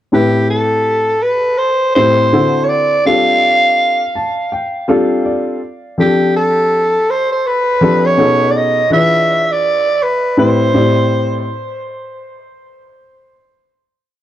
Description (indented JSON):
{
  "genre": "hip hop",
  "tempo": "82 BPM",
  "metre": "4/4",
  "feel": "swing 61% on 16ths",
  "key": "A minor",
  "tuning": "A4 = 440 Hz",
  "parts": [
    { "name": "growling soprano saxophone", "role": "melody", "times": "0.1-11.4 s", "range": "G4 to F5", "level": "-13 LUFS", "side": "right 1 dB", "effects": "analog delay" },
    { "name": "dark upright piano", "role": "accompaniment", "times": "0.1-11.4 s", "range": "A2 to A5", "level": "-14 LUFS", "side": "left 1 dB", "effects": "none" }
  ],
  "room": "moderate studio reverb, RT60 0.5 s",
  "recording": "dry, gritty hardware recording, cassette tape",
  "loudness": "-11 LUFS",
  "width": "side -12 dB against mid",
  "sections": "0.1-11.8 A section",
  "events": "upright piano fill 3.8-6.0",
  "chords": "0.1 Am9; 2.3 D9; 3.1 G7sus4; 6.0 F6; 8.2 B13; 8.9 E7b9; 10.4 Am9"
}